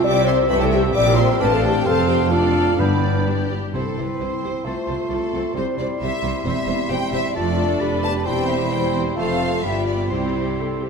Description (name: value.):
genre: quick classical-period movement for symphony orchestra.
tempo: 132 BPM.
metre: 2/4.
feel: rubato.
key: C major.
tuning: A4 = 439 Hz.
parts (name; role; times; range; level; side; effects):
warm studio violin section; melody; 0.0-10.9 s; G4 to A5; -31 LUFS; left 4 dB; none.
clear oboe; second line; 0.0-10.8 s; E5 to C6; -32 LUFS; right 2 dB; none.
dark clarinet; second line; 0.0-10.9 s; C4 to A4; -29 LUFS; right 1 dB; none.
mellow hollow large flute ensemble; second line; 0.0-10.6 s; G4 to B5; -30 LUFS; left 2 dB; none.
rich studio violin section; second line; 0.0-10.6 s; G4 to D6; -29 LUFS; left 2 dB; none.
rich studio viola section; accompaniment; 0.0-10.9 s; A3 to E5; -29 LUFS; right 1 dB; none.
warm bassoon; accompaniment; 0.0-10.8 s; G3 to D4; -28 LUFS; left 1 dB; none.
dark French horn section; sustained chords; 0.0-10.8 s; A3 to D5; -23 LUFS; left 3 dB; none.
rich studio cello section; bass; 0.0-10.9 s; E2 to C3; -26 LUFS; right 2 dB; none.
warm studio double bass section; bass; 0.0-10.9 s; E1 to C2; -26 LUFS; right 4 dB; none.
timpani; percussion; 2.8-4.4 s; G2 to C3; -27 LUFS; right 1 dB; none.
room: wet scoring stage reverb, RT60 2.2 s.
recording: minimal, uncompressed stereo recording.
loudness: -18 LUFS.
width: side -5 dB against mid.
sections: 0.0-3.7 A section; 3.7-10.9 B section.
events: none.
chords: 0.0 C; 0.9 C7/Bb; 1.4 F/A; 1.9 F; 2.3 Dm/F; 2.8 G; 3.7 C; 4.7 F/C; 5.6 C; 6.5 C/E; 7.4 Dm/F; 7.8 G7/F; 8.3 C/E; 9.2 F; 9.6 G7; 10.1 C.